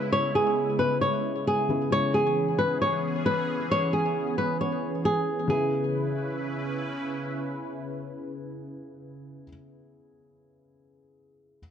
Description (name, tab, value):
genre	hip hop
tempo	134 BPM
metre	4/4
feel	half-time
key	C# minor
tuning	A4 = 440 Hz
part	flamenco guitar	melody	0.0-6.8 s	G#4 to C#5	-25 LUFS	equal	low-pass filter, ping-pong delay
part	felt-muted upright piano	accompaniment	0.0-11.6 s	C#3 to E4	-35 LUFS	left 4 dB	low-pass filter
part	sweeping resonant pad	sustained chords	0.0-9.4 s	C#3 to B4	-31 LUFS	right 1 dB	chorus
room	light reverb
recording	dark, warm production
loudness	-24 LUFS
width	side -8 dB against mid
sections	0.0-5.5 A section; 5.5-9.1 B section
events	none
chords	0.0 C#m7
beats	| 0.12 0.57 1.02 1.47 | 1.92 2.36 2.81 3.26 | 3.71 4.16 4.60 5.05 | 5.50 5.95 6.39 6.84 | 7.29 7.74 8.19 8.63